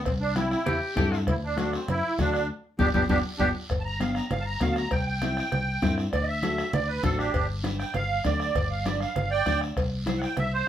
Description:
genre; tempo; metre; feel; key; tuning
latin, cumbia; 198 BPM; 4/4; straight; G major; A4 = 440 Hz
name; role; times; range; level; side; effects
musette accordion; melody; 0.0-10.7 s; B3 to Bb5; -28 LUFS; right 3 dB; none
fingered electric bass; bass; 0.0-10.6 s; G1 to G2; -31 LUFS; left 1 dB; none
bombo; percussion; 0.1-10.5 s; none; -31 LUFS; left 2 dB; none
congas; percussion; 0.1-10.5 s; none; -33 LUFS; right 1 dB; none
cowbell and timbales; percussion; 0.1-10.5 s; none; -36 LUFS; right 3 dB; none
guiro; percussion; 0.1-10.7 s; none; -42 LUFS; right 2 dB; none
mellow electric guitar; accompaniment; 0.4-10.3 s; A3 to D5; -31 LUFS; left 1 dB; none
clear tenor saxophone; second line; 0.7-3.5 s; G4; -29 LUFS; left 1 dB; none
room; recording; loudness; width
moderate studio reverb, RT60 0.5 s; band playing live in one room; -24 LUFS; side -10 dB against mid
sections
0.0-3.7 A section; 3.7-10.7 B section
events
band accent 2.5-3.7; drum fill 3.2-3.7; accordion solo 3.7-10.7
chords
0.1 C; 1.3 D; 2.5 G; 4.9 C; 6.1 D7; 7.3 G; 9.8 C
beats
| 0.06 0.37 0.67 0.97 | 1.28 1.58 1.88 2.19 | 2.49 2.79 3.10 3.40 | 3.70 4.01 4.31 4.61 | 4.92 5.22 5.52 5.83 | 6.13 6.43 6.74 7.04 | 7.34 7.65 7.95 8.25 | 8.55 8.86 9.16 9.46 | 9.77 10.07 10.37 10.68

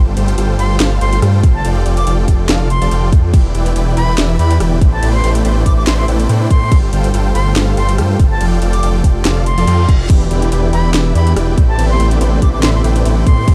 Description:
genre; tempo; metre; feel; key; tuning
future bass; 142 BPM; 4/4; swing 54% on 16ths, half-time; A minor; A4 = 440 Hz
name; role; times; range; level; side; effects
airy breathy pad; sustained chords; 0.0-13.5 s; C3 to B4; -30 LUFS; equal; none
supersaw chords; riff; 0.0-13.5 s; E3 to A5; -22 LUFS; equal; sidechain pumping
detuned saw bass; bass; 0.0-13.5 s; E1 to A2; -16 LUFS; equal; chorus, sidechain pumping
trap drum kit; drums; 0.2-13.5 s; crash cymbal, hi-hat, rim click, snare drum; -23 LUFS; equal; none
bright reedy wooden flute; melody; 0.6-13.5 s; A5 to D6; -26 LUFS; equal; sidechain pumping, digital delay
electronic kick drum; drums; 1.4-13.5 s; none; -12 LUFS; equal; none
reverse cymbal; sound effects; 9.5-10.1 s; none; -36 LUFS; equal; none
overdriven tine electric piano; accompaniment; 10.1-13.5 s; D3 to G4; -23 LUFS; equal; medium tremolo, sidechain pumping
room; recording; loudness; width
little or no reverb; dark, warm production; -13 LUFS; mono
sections
0.0-13.5 A section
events
reverse cymbal 9.5-10.1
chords
0.0 G9sus4; 1.6 F69; 3.3 Em7; 4.8 Am11; 6.7 G9sus4; 8.4 F69; 10.1 Em7; 11.6 Am11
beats
0.38 0.80 1.22 | 1.65 2.07 2.49 2.91 | 3.34 3.76 4.18 4.60 | 5.03 5.45 5.87 6.29 | 6.72 7.14 7.56 7.98 | 8.41 8.83 9.25 9.67 | 10.10 10.52 10.94 11.36 | 11.79 12.21 12.63 13.05 | 13.48

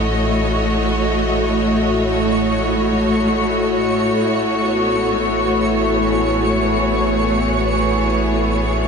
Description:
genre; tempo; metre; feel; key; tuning
ambient; free time; none; none; A lydian; A4 = 440 Hz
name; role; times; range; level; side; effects
clear studio string section; sustained chords; 0.0-8.9 s; A2 to D#5; -17 LUFS; equal; shimmer reverb
warm sub bass; bass; 0.0-8.9 s; A1; -24 LUFS; equal; none
hand-pumped harmonium; drone; 0.0-8.9 s; A3 to E4; -24 LUFS; left 1 dB; none
twinkling granular texture; texture; 0.0-8.9 s; C#5 to C#6; -23 LUFS; right 1 dB; built-in reverb, shimmer reverb
room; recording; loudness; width
wet huge ambient reverb, RT60 7.8 s; nothing above 10.9 kHz; -15 LUFS; side -5 dB against mid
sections
0.0-8.9 A section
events
none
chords
0.0 A6; 4.2 E69/A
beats
free time

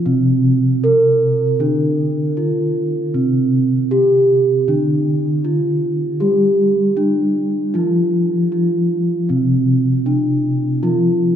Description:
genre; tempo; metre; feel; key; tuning
gamelan; 78 BPM; 4/4; straight; C slendro; A4 = 440 Hz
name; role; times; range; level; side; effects
gamelan-type bronze metallophone; melody; 0.0-11.4 s; C4 to Bb4-40c; -16 LUFS; right 1 dB; none
gamelan-type bronze metallophone; accompaniment; 0.0-11.4 s; C3 to G3+20c; -18 LUFS; left 1 dB; none
room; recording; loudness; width
wet cathedral reverb, RT60 5.4 s; recorded in a church or concert hall; -14 LUFS; side -9 dB against mid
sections
0.0-11.4 A section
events
none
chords
none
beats
| 0.06 0.82 1.60 2.37 | 3.14 3.91 4.68 5.45 | 6.22 6.99 7.76 8.53 | 9.30 10.07 10.84

